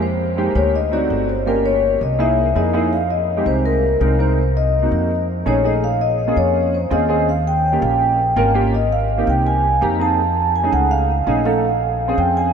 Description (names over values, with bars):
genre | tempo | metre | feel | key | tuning
jazz | 165 BPM | 4/4 | straight | F minor | A4 = 440 Hz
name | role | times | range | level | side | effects
vibraphone with soft mallets | melody | 0.0-12.5 s | Bb4 to Bb5 | -19 LUFS | left 1 dB | diffuse ambient delay
upright bass | bass | 0.0-12.5 s | G1 to F2 | -20 LUFS | equal | none
warm concert grand piano | accompaniment | 0.4-12.5 s | Ab3 to Bb4 | -21 LUFS | right 2 dB | analog chorus
room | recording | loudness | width
wet huge ambient reverb, RT60 7.3 s | dreamy mix soaked in reverb | -15 LUFS | side -7 dB against mid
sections
0.0-2.9 A section; 2.9-12.5 B section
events
none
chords
0.0 Fm11; 0.7 D7b9; 1.5 Gm7b5; 2.2 C7alt; 2.9 Fm9; 4.4 Cm7b5; 5.1 F7alt; 5.8 Bbm9; 7.3 Eb9; 8.7 Abmaj9; 10.2 F7alt; 11.6 Bbm7